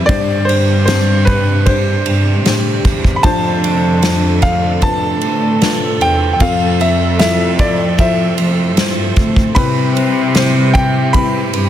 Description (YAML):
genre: pop ballad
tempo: 76 BPM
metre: 4/4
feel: straight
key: C major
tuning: A4 = 442 Hz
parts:
  - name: felt-muted upright piano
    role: accompaniment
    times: 0.0-11.7 s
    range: G2 to C5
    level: -20 LUFS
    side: left 7 dB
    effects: none
  - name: warm studio string section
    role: sustained chords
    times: 0.0-11.7 s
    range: C3 to A4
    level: -22 LUFS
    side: right 2 dB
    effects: none
  - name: picked steel-string acoustic guitar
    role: arpeggios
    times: 0.0-11.7 s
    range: C3 to C5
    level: -26 LUFS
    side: right 5 dB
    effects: tape echo
  - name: warm studio cello section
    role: bass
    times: 0.0-11.7 s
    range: D2 to C3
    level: -16 LUFS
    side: right 1 dB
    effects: none
  - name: downlifter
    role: sound effects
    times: 0.0-3.2 s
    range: none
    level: -35 LUFS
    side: equal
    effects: none
  - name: clear concert grand piano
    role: melody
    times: 0.1-11.7 s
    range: B4 to B5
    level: -18 LUFS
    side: equal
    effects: none
  - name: unplugged drum kit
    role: drums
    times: 0.1-11.7 s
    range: kick drum, ride cymbal, snare drum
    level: -17 LUFS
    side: equal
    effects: none
room: light reverb, studio ambience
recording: dense, heavily limited modern master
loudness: -11 LUFS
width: side -11 dB against mid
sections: 0.0-11.7 A section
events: none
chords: 0.1 Gsus4; 3.2 Dm7/F; 6.4 Fmaj7; 9.6 Cmaj7